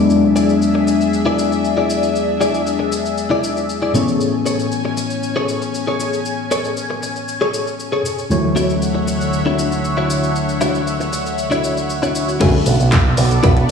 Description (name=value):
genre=nu-disco, nu disco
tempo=117 BPM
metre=4/4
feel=straight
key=unclear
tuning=A4 = 440 Hz
part: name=tine electric piano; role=accompaniment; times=0.0-12.6 s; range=D2 to C#5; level=-19 LUFS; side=left 2 dB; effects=overdrive, sidechain pumping, tape echo
part: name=lush unison pad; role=sustained chords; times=0.0-13.7 s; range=D3 to G#5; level=-22 LUFS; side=left 2 dB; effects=chorus, phaser, sidechain pumping
part: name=direct-recorded clean electric guitar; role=riff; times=0.0-13.6 s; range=D4 to D5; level=-21 LUFS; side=left 2 dB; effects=analog chorus, tape echo
part: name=house drum kit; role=drums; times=0.1-13.7 s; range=crash cymbal, handclaps, hi-hat, shaker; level=-28 LUFS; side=left 2 dB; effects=overdrive
part: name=picked electric bass with an envelope filter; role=bass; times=12.4-13.6 s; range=B1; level=-15 LUFS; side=right 1 dB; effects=none
part: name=electronic kick drum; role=drums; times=12.4-13.5 s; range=none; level=-16 LUFS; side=equal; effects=overdrive
room=wet plate reverb, RT60 1.5 s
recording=played on a big sound system in a bare room, large studio reverb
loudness=-15 LUFS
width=side -6 dB against mid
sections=0.0-12.4 A section; 12.4-13.7 B section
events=drop 12.4-13.7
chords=0.0 E7; 3.9 Amaj7; 8.3 Dmaj9; 12.4 Bm7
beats=| 0.10 0.61 1.13 1.64 | 2.15 2.67 3.18 3.69 | 4.21 4.72 5.23 5.74 | 6.26 6.77 7.28 7.79 | 8.31 8.82 9.33 9.85 | 10.36 10.87 11.38 11.90 | 12.41 12.92 13.44